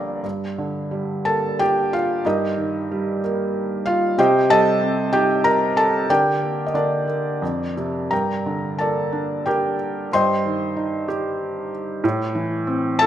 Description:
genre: classical, lyrical solo piano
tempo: 92 BPM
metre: 3/4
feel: uneven beats, rubato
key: G minor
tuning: A4 = 440 Hz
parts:
  - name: felt-muted upright piano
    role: solo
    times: 0.0-13.1 s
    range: G1 to C6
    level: -19 LUFS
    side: equal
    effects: none
room: moderate scoring stage reverb, RT60 1.6 s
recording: none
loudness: -19 LUFS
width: side -11 dB against mid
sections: 0.2-13.1 A section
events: felt piano fill 0.0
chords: 0.2 Gm; 2.2 Eb/G; 4.2 Cm; 6.1 Gm/D; 7.4 F5; 8.1 Gm; 10.1 Cm/G; 12.0 Am

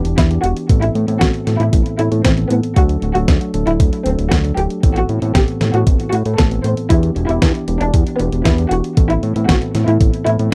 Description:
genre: italo disco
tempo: 116 BPM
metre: 4/4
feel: straight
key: unclear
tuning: A4 = 438 Hz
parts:
  - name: dark symphonic violin section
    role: melody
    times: 0.0-10.4 s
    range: B3 to C5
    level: -23 LUFS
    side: equal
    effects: tape echo
  - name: mellow tine electric piano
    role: stabs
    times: 0.0-10.5 s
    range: A2 to A4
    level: -24 LUFS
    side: equal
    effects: none
  - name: fat analog bass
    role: bass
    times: 0.0-10.5 s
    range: D1 to A2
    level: -20 LUFS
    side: equal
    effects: tube saturation
  - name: clean 12-bit digital drum machine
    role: drums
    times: 0.0-10.5 s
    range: hi-hat, snare drum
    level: -22 LUFS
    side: equal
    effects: small room ambience
  - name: electronic kick drum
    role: drums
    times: 0.2-10.1 s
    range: none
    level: -17 LUFS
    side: equal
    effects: small room ambience
room: little or no reverb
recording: dry, close 1970s-style studio recording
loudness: -15 LUFS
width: mono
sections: 0.0-10.5 A section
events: none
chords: 0.0 Em7; 0.7 Amadd9; 2.8 D; 4.8 Amadd9; 6.9 Em7; 9.0 Amadd9

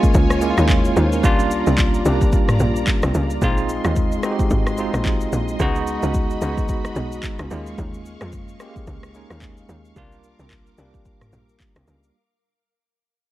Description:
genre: amapiano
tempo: 110 BPM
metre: 4/4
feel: swing 58% on 16ths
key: unclear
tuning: A4 = 440 Hz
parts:
  - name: bell-like tine electric piano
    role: accompaniment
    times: 0.0-12.2 s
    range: G3 to Db5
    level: -23 LUFS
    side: right 1 dB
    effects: medium stereo tremolo
  - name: string machine, violas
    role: sustained chords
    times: 0.0-12.1 s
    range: Ab3 to D6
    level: -29 LUFS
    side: equal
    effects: ensemble chorus, sidechain pumping
  - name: afro-pop drum kit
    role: drums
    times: 0.0-12.1 s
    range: handclaps, kick drum, rim click, shaker, toms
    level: -20 LUFS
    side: equal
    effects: none
  - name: tight log drum bass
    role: bass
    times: 0.1-12.1 s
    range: Ab1 to F2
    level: -22 LUFS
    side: equal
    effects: none
room: digital ambience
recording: worn, warbling old tape, cassette tape, warbly pitch drift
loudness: -17 LUFS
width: side -15 dB against mid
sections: 0.0-12.1 A section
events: fade-out 0.0-12.1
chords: 0.0 Eb9sus4; 1.2 C9sus4; 3.4 Bb9sus4; 5.6 Db9sus4; 7.5 Eb9sus4; 10.0 C9sus4

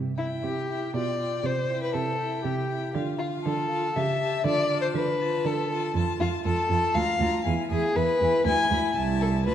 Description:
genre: quick classical-period movement for string quartet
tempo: 120 BPM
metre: 3/4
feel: rubato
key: A minor from 5.9 s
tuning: A4 = 440 Hz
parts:
  - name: rich cello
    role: bass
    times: 0.0-9.5 s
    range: C2 to D3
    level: -28 LUFS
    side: right 4 dB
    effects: none
  - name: rich violin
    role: melody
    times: 0.2-9.5 s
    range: F5 to B5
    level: -38 LUFS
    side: left 8 dB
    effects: none
  - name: warm violin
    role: second line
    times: 0.2-9.5 s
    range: E4 to G#5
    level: -26 LUFS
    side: left 3 dB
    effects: none
  - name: warm viola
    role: accompaniment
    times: 0.2-9.5 s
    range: E4 to G4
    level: -32 LUFS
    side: right 1 dB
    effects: none
room: moderate concert hall reverb, RT60 2.0 s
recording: dark, warm production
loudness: -24 LUFS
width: side -10 dB against mid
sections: 0.0-9.5 A section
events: none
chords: 0.0 C; 1.0 G7/B; 1.4 C; 2.9 Dm; 4.0 A7/C#; 4.5 Dm; 5.9 F; 7.0 Bb; 7.5 E; 8.5 E7; 9.0 Am/C

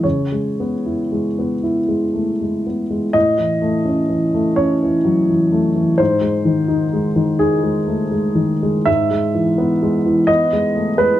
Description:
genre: neoclassical minimalist piano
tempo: 37-44 BPM (dotted quarters)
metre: 6/8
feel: rubato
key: unclear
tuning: A4 = 443 Hz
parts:
  - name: warm upright piano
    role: solo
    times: 0.0-11.2 s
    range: G#2 to E5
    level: -15 LUFS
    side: equal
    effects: none
room: light reverb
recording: dark, warm production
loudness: -15 LUFS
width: side -13 dB against mid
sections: 0.0-3.1 A section; 3.1-11.2 A section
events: none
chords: 0.0 C#m7; 3.1 A; 6.0 G#; 8.9 E/G#

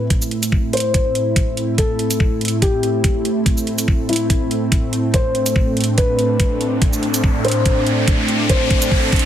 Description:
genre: heavy wobble dubstep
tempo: 143 BPM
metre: 4/4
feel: swing 54% on 16ths, half-time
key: A minor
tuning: A4 = 440 Hz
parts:
  - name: felt-muted upright piano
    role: melody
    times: 0.0-9.3 s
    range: E4 to C5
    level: -22 LUFS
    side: left 2 dB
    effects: digital delay
  - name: lush unison pad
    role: sustained chords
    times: 0.0-9.3 s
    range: A2 to E4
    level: -20 LUFS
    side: right 1 dB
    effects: chorus, sidechain pumping
  - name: electronic hi-hat and shaker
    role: drums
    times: 0.1-9.3 s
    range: none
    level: -24 LUFS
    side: right 3 dB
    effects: studio ambience
  - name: electronic kick drum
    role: drums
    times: 0.1-9.2 s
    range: none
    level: -17 LUFS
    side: equal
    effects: studio ambience
  - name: riser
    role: sound effects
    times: 6.3-9.3 s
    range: none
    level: -24 LUFS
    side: equal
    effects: none
room: light reverb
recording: heavily compressed radio sound, multiband compression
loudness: -15 LUFS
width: side -10 dB against mid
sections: 0.0-9.3 A section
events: build-up 0.0-9.3; filter sweep on analog synth pad 0.0-9.3; drum fill 5.1-9.3; riser 6.3-9.3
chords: 0.0 Am

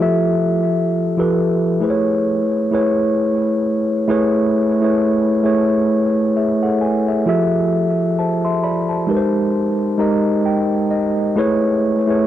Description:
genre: hip hop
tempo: 66 BPM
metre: 4/4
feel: swing 59% on 16ths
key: unclear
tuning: A4 = 435 Hz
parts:
  - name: mellow tine electric piano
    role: solo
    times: 0.0-12.3 s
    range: F3 to C6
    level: -15 LUFS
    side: equal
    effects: medium stereo tremolo, low-pass filter, analog delay
room: wet studio reverb, RT60 0.5 s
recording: dark, warm production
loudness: -15 LUFS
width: side -12 dB against mid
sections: 0.0-4.1 A section; 4.1-12.3 B section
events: none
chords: 0.0 Fmaj9; 1.8 Amaj9; 7.3 Fmaj9; 9.1 G#maj9; 11.4 Amaj9

